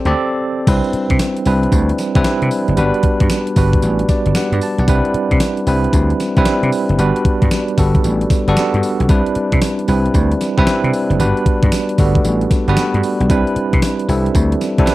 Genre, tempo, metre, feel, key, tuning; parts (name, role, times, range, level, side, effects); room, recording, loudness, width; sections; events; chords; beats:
R&B, new jack swing; 114 BPM; 4/4; swing 65% on 16ths; A4 = 440 Hz
bell-like tine electric piano; accompaniment; 0.0-14.9 s; G3 to A5; -16 LUFS; right 1 dB; medium stereo tremolo
vintage slap bass; bass; 0.1-14.8 s; F#1 to C3; -16 LUFS; equal
gated 80s digital drum machine; drums; 0.1-14.9 s; crash cymbal, hi-hat, kick drum, snare drum, tambourine; -16 LUFS; equal; gated reverb, gated reverb snare, overdrive
little or no reverb; dry, close 1970s-style studio recording; -13 LUFS; side -17 dB against mid
0.7-14.9 A section
break 0.1-0.7; tine electric piano fill 3.8-4.9
0.0 D7sus4; 0.7 Cmaj9; 2.8 Gmaj7; 4.9 Cmaj9; 7.0 Gmaj7; 9.1 Cmaj9; 11.2 Gmaj7; 13.3 Cmaj9
0.14 | 0.67 1.19 1.72 2.25 | 2.77 3.30 3.83 4.35 | 4.88 5.40 5.93 6.46 | 6.98 7.51 8.04 8.56 | 9.09 9.62 10.14 10.67 | 11.19 11.72 12.25 12.77 | 13.30 13.82 14.35 14.88